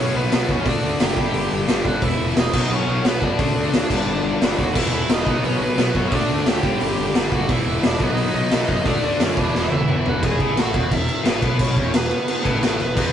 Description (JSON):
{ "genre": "punk rock", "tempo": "176 BPM", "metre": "4/4", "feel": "straight", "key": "unclear", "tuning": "A4 = 440 Hz", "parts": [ { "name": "high-gain lead guitar", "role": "melody", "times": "0.0-13.1 s", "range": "B3 to G#5", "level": "-25 LUFS", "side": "right 1 dB", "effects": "distortion" }, { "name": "crunchy overdriven guitar", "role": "riff", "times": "0.0-13.1 s", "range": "E2 to D4", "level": "-25 LUFS", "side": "left 4 dB", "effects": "none" }, { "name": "tight distorted guitar", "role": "riff", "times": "0.0-13.1 s", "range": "E2 to D4", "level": "-31 LUFS", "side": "equal", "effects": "none" }, { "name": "fuzz picked electric bass", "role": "bass", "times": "0.0-13.1 s", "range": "E1 to F#2", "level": "-27 LUFS", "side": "right 1 dB", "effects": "overdrive" }, { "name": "raw garage drum kit", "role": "drums", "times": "0.3-13.1 s", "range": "crash cymbal, hi-hat, kick drum, snare drum, toms", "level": "-20 LUFS", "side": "equal", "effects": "none" }, { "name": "tight distorted guitar", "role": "riff", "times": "4.7-10.2, 13.0-13.1 s", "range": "E2 to D4", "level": "-30 LUFS", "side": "right 4 dB", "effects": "none" } ], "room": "moderate booth ambience, RT60 0.2 s", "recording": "rough rehearsal-room recording, nothing above 11.0 kHz", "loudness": "-17 LUFS", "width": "side -9 dB against mid", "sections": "0.0-10.2 A section; 10.2-13.1 B section", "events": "drum fill 9.5-10.2", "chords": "0.0 B; 0.7 D; 1.2 G5; 2.0 E5; 2.5 B; 3.4 D5; 3.9 G5; 4.8 E5; 5.3 B; 6.1 D5; 6.6 G5; 7.5 E5; 8.0 B; 8.9 D; 9.4 E5; 10.2 E" }